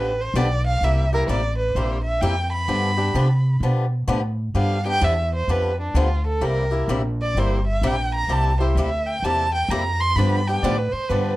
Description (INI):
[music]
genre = acoustic string swing (jazz manouche)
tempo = 128 BPM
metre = 4/4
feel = swing 64% on 8ths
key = G mixolydian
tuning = A4 = 441 Hz
[part]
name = warm violin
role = melody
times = 0.0-11.4 s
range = D4 to C6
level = -24 LUFS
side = right 1 dB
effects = none
[part]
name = picked swing-style acoustic guitar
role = accompaniment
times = 0.0-11.3 s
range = C3 to G4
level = -26 LUFS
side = left 2 dB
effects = none
[part]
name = upright bass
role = bass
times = 0.0-11.4 s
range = G1 to C3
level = -22 LUFS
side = equal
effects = none
[part]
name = picked steel-string acoustic guitar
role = accompaniment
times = 10.2-11.3 s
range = D3 to G4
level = -28 LUFS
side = right 4 dB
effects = none
[sound]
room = light reverb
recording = dark, warm production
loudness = -19 LUFS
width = side -17 dB against mid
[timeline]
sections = 0.0-11.4 A section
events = violin solo 0.0-11.4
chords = 0.0 G7; 0.8 C7; 2.7 G7; 6.4 C7; 10.2 G7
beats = 0.34 | 0.81 1.28 1.75 2.21 | 2.68 3.15 3.62 4.08 | 4.55 5.02 5.49 5.96 | 6.42 6.89 7.36 7.83 | 8.29 8.76 9.23 9.70 | 10.16 10.63 11.10